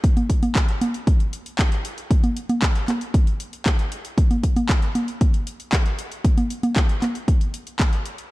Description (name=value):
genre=italo disco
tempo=116 BPM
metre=4/4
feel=straight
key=none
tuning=none
part: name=electronic kick drum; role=drums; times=0.0-7.9 s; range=none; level=-18 LUFS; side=equal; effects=overdrive, studio reverb
part: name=house drum kit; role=drums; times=0.0-8.3 s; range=congas, handclaps, hi-hat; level=-25 LUFS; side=right 1 dB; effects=overdrive, studio reverb
room=digital ambience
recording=dark, warm production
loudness=-19 LUFS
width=side -19 dB against mid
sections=0.0-8.3 A section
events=none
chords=none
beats=| 0.04 0.56 1.07 1.59 | 2.11 2.62 3.14 3.66 | 4.18 4.69 5.21 5.73 | 6.25 6.76 7.28 7.80